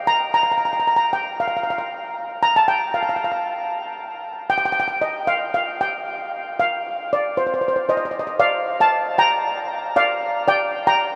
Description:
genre	calypso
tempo	115 BPM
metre	4/4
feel	swing 53% on 16ths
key	Bb major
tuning	A4 = 440 Hz
part	steel pan	solo	0.0-11.2 s	C5 to Bb5	-21 LUFS	equal	none
room	wet huge ambient reverb, RT60 7.4 s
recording	in a vast, echoing space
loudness	-21 LUFS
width	mono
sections	0.0-8.4 A section; 8.4-11.2 B section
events	none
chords	0.0 N.C.; 8.4 Bb; 10.5 G5

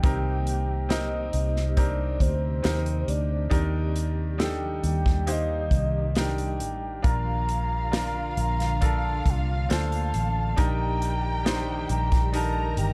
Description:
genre	pop ballad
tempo	68 BPM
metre	4/4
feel	straight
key	unclear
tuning	A4 = 442 Hz
part	soft octave-layered synth lead	melody	0.0-12.9 s	C5 to Bb5	-34 LUFS	equal	chorus, tremolo
part	bright grand piano	accompaniment	0.0-12.9 s	Bb2 to C5	-35 LUFS	equal	none
part	ethereal airy pad	sustained chords	0.0-12.9 s	C3 to G4	-40 LUFS	equal	ensemble chorus, built-in reverb, tremolo
part	vintage muted fingered electric bass	bass	0.0-12.9 s	G1 to Eb2	-29 LUFS	equal	none
part	natural country drum kit	drums	0.0-12.9 s	hi-hat, kick drum, snare drum	-28 LUFS	equal	none
part	warm studio violin section	second line	7.0-12.9 s	F4 to Bb5	-39 LUFS	equal	none
room	studio reverb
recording	dark, warm production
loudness	-26 LUFS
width	mono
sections	0.0-12.9 A section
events	none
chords	0.0 Cm7; 3.5 Ebmaj7; 7.0 Bbmaj7; 10.6 Ebmaj7/Bb

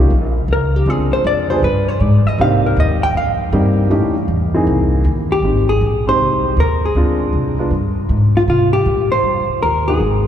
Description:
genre	jazz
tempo	158 BPM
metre	4/4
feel	swing 66% on 8ths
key	unclear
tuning	A4 = 439 Hz
part	warm baby grand piano	accompaniment	0.0-10.0 s	E3 to Ab4	-20 LUFS	left 1 dB	none
part	upright bass	bass	0.0-10.3 s	Ab1 to C3	-16 LUFS	equal	none
part	vintage hollow-body jazz guitar	melody	0.5-10.3 s	F4 to G5	-18 LUFS	equal	none
room	wet cathedral reverb, RT60 5.5 s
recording	recorded in a church or concert hall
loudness	-13 LUFS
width	side -9 dB against mid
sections	0.0-5.4 A section; 5.4-10.3 B section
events	hollow-body jazz guitar solo 0.0-5.4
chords	0.0 Db6; 0.9 Dm7b5; 1.6 G; 2.4 Cm7; 3.9 A7#11; 4.7 C7alt; 5.4 Abmaj9; 7.0 Dm7b5; 7.7 Fmadd9/G (rootless); 8.5 Cm7

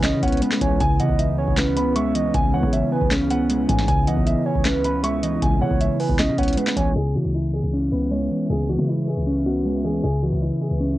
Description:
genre	hip hop, trap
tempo	156 BPM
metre	4/4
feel	half-time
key	C# minor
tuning	A4 = 441 Hz
part	soft octave-layered synth lead	second line	0.0-7.0 s	B4 to E5	-27 LUFS	right 6 dB	chorus, cassette tape, analog delay
part	mellow electric guitar	accompaniment	0.0-11.0 s	C#3 to C#4	-22 LUFS	equal	cassette tape
part	deep dark ambient pad	sustained chords	0.0-11.0 s	C#3 to C#6	-29 LUFS	right 1 dB	chorus, built-in reverb, cassette tape
part	warm 808-style bass	bass	0.0-11.0 s	C#2 to C#3	-27 LUFS	equal	none
part	booming analog drum machine	drums	0.0-7.0 s	handclaps, hi-hat, kick drum, snare drum	-23 LUFS	equal	cassette tape
part	dark grand piano	melody	0.2-10.8 s	E4 to C#6	-28 LUFS	equal	cassette tape
room	light reverb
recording	home recording on cassette, low-pass filter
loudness	-18 LUFS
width	side -16 dB against mid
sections	0.0-7.0 A section; 7.0-11.0 B section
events	filter sweep 7.0-11.0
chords	0.0 C#m7

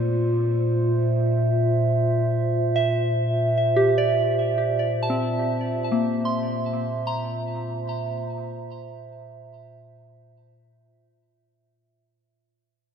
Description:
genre	ambient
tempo	free time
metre	none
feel	none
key	Bb lydian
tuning	A4 = 439 Hz
part	warbly tape-like pad	sustained chords	0.0-11.9 s	Bb2 to E5	-22 LUFS	right 1 dB	chorus, built-in reverb
part	soft synth bell	arpeggios	0.0-11.9 s	Bb3 to C6	-27 LUFS	left 2 dB	chorus, ping-pong delay
room	wet cathedral reverb, RT60 6.4 s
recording	none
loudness	-21 LUFS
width	side -7 dB against mid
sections	0.0-11.9 A section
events	fade-out 3.2-11.9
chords	0.0 Bbmaj7

